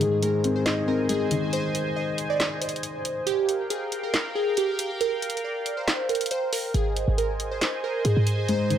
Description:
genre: hip hop, trap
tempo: 138 BPM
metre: 4/4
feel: half-time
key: unclear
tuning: A4 = 438 Hz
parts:
  - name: glassy digital keys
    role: melody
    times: 0.0-8.8 s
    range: G4 to Eb5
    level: -27 LUFS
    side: right 2 dB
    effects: chorus, dub echo
  - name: dark concert grand piano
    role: accompaniment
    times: 0.0-3.3, 8.5-8.8 s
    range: Ab2 to Eb4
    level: -26 LUFS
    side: left 2 dB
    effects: dub echo
  - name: sweeping resonant pad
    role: sustained chords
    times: 0.0-8.8 s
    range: Bb4 to Ab5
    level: -33 LUFS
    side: right 2 dB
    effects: chorus
  - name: trap drum kit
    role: drums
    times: 0.0-8.8 s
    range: handclaps, hi-hat, snare drum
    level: -28 LUFS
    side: right 1 dB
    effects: none
  - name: short 808-style bass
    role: bass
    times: 6.7-8.8 s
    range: Ab1 to Ab2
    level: -24 LUFS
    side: right 1 dB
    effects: none
room: light reverb, digital ambience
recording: echo-heavy mix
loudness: -23 LUFS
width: side -10 dB against mid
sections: 0.0-8.8 A section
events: break 0.0-8.5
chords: 0.0 Ab; 3.3 Gm7; 6.7 Ab

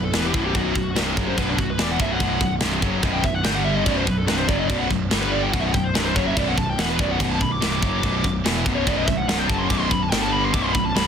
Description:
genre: heavy metal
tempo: 144 BPM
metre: 4/4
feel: straight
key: B phrygian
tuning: A4 = 440 Hz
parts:
  - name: bluesy overdriven lead guitar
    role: melody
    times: 0.0-11.1 s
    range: D4 to D6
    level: -26 LUFS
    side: left 1 dB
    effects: distortion
  - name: cranked stack guitar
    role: riff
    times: 0.0-11.1 s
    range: B1 to G3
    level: -30 LUFS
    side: equal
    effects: overdrive
  - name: scooped high-gain guitar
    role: riff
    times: 0.0-11.1 s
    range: B1 to G3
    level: -27 LUFS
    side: right 10 dB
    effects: distortion
  - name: tight distorted guitar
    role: riff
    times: 0.0-11.1 s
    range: B1 to G3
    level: -27 LUFS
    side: left 13 dB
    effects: distortion
  - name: fuzz picked electric bass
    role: bass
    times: 0.0-11.1 s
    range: B0 to G1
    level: -27 LUFS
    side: equal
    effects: overdrive
  - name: tight metal drum kit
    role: drums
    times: 0.1-11.1 s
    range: crash cymbal, kick drum, snare drum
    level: -24 LUFS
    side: equal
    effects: soft clipping on kick
room: studio ambience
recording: dense, heavily limited modern master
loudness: -19 LUFS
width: side -7 dB against mid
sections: 0.0-11.1 A section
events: lead electric guitar solo 0.0-11.1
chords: 0.0 B5; 3.5 G5; 3.9 B5; 5.1 G5; 5.5 Bm; 10.1 G5; 10.5 B5

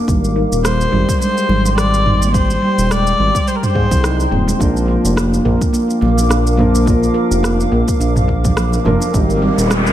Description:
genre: organic downtempo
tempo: 106 BPM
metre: 4/4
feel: swing 56% on 16ths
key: Bb mixolydian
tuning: A4 = 440 Hz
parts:
  - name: granular cloud pad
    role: sustained chords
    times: 0.0-9.9 s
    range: Bb4 to D6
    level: -24 LUFS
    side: equal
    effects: built-in reverb, vintage 12-bit sampler grit, sidechain pumping
  - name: handpan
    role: arpeggios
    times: 0.1-9.9 s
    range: G3 to Bb4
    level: -19 LUFS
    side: equal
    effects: low-pass filter, tape echo
  - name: smooth synth bass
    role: bass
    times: 0.1-9.9 s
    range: Eb1 to Ab2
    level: -17 LUFS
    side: equal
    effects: none
  - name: deep house drum kit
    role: drums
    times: 0.1-9.9 s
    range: rim click, shaker, toms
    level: -22 LUFS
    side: right 1 dB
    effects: studio reverb
  - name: electronic kick drum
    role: drums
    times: 0.1-9.3 s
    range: none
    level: -18 LUFS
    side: equal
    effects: studio reverb
  - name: clear kamancheh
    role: melody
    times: 0.6-4.3 s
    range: Bb4 to D5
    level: -19 LUFS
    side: left 2 dB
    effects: vintage 12-bit sampler grit, tape echo
  - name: bongos and congas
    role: percussion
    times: 1.2-9.1 s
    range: none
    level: -26 LUFS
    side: right 1 dB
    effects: none
  - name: felt-muted upright piano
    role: accompaniment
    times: 4.6-9.9 s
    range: F3 to Bb4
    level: -19 LUFS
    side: right 1 dB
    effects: sidechain pumping, tape echo
  - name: riser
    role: sound effects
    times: 9.3-9.9 s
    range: none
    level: -22 LUFS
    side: left 3 dB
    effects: none
room: light reverb, studio ambience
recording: none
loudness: -12 LUFS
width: side -12 dB against mid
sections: 0.0-9.9 A section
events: filter sweep on handpan 0.0-9.9; riser 9.3-9.9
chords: 0.1 Abmaj7; 4.6 Bb; 9.1 Abmaj7

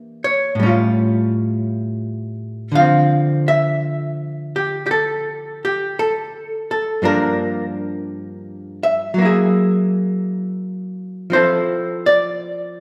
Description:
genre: jazz ballad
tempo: 56 BPM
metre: 4/4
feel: swing 67% on 8ths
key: unclear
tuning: A4 = 440 Hz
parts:
  - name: archtop guitar, miked and amplified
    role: solo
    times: 0.0-12.8 s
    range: G2 to F5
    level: -19 LUFS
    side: equal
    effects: none
room: wet scoring stage reverb, RT60 1.7 s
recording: recorded in a church or concert hall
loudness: -19 LUFS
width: mono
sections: 0.0-12.8 A section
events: none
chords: 0.0 Em7b5; 0.6 Aaug7; 2.7 Dm9; 7.0 Gm7; 9.2 Gb9; 11.3 Fmaj7

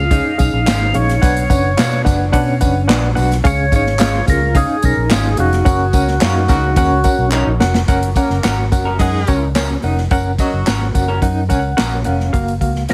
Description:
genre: uptempo 1960s-style soul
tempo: 108 BPM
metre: 4/4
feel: straight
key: F# major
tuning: A4 = 441 Hz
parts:
  - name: percussive tonewheel organ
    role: melody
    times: 0.0-7.3, 12.9 s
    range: F#4 to E#5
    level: -23 LUFS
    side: equal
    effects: slow rotary speaker, tape echo
  - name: barky reed electric piano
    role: accompaniment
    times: 0.0-12.9 s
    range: B2 to G#5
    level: -22 LUFS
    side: equal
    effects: overdrive, fast tremolo
  - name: electric guitar through a small old amp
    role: riff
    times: 0.0-12.3 s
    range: C#4 to F#4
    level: -26 LUFS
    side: equal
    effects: tremolo
  - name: vintage muted fingered electric bass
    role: bass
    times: 0.0-12.9 s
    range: E#1 to B2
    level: -20 LUFS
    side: equal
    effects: none
  - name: swinging big-band drum kit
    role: drums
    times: 0.1-12.9 s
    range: hi-hat, kick drum, snare drum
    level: -20 LUFS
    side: equal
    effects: none
  - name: tambourine and handclaps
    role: percussion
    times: 0.1-11.9 s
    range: none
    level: -29 LUFS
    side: equal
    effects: none
  - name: electric guitar through a small old amp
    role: stabs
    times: 0.7-12.9 s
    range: G#3 to A#4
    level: -28 LUFS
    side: equal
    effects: none
  - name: warm horn section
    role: second line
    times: 6.2-10.9 s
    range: C#3 to A#4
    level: -26 LUFS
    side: equal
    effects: none
room: light reverb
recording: heavily compressed radio sound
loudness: -15 LUFS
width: mono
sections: 0.0-7.9 A section; 7.9-12.3 B section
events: band accent 5.7-7.9; drum fill 7.3-7.9; reed electric piano fill 11.2-12.3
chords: 0.0 C#; 1.2 Bm; 3.4 C#; 5.7 F#; 12.3 F#maj7

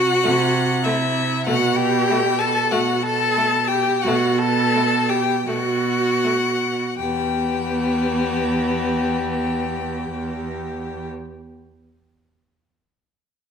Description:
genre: classical, slow romantic movement for string quartet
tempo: 38-50 BPM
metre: 4/4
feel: rubato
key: E minor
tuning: A4 = 438 Hz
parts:
  - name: rich violin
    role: melody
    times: 0.0-11.1 s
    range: E5 to A5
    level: -23 LUFS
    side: left 10 dB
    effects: none
  - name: clear viola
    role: accompaniment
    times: 0.0-11.1 s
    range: E4 to A4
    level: -24 LUFS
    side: right 2 dB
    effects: none
  - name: rich cello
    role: bass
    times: 0.0-11.1 s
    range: E2 to C3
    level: -24 LUFS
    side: right 5 dB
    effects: none
  - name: rich violin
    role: second line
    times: 0.2-11.1 s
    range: A3 to B3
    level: -26 LUFS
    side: left 3 dB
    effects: none
room: wet recital hall reverb, RT60 1.4 s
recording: none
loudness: -18 LUFS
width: side -7 dB against mid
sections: 0.0-7.0 A section; 7.0-12.8 B section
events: slowing down 0.0-7.0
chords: 0.0 Am/C (rootless); 1.5 B5; 7.0 Em

